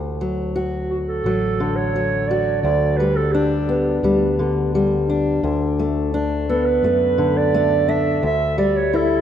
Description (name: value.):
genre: acoustic folk duo or small band.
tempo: 86 BPM.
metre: 4/4.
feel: straight.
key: D major.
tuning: A4 = 440 Hz.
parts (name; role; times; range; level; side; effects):
fingerpicked steel-string acoustic guitar; accompaniment; 0.0-9.2 s; D2 to F#4; -19 LUFS; left 2 dB; none.
fretless electric bass; bass; 0.0-9.2 s; A1 to F#2; -26 LUFS; equal; none.
mellow clarinet; second line; 0.9-9.2 s; F#4 to E5; -21 LUFS; right 6 dB; none.
room: moderate lush hall reverb, RT60 2.6 s.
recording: rough home demo mix.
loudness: -17 LUFS.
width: side -9 dB against mid.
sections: 0.0-9.2 A section.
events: clarinet solo 0.0-9.2.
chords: 0.0 D; 2.6 Gmaj7/D; 5.4 Bm7/D; 8.2 A7/D.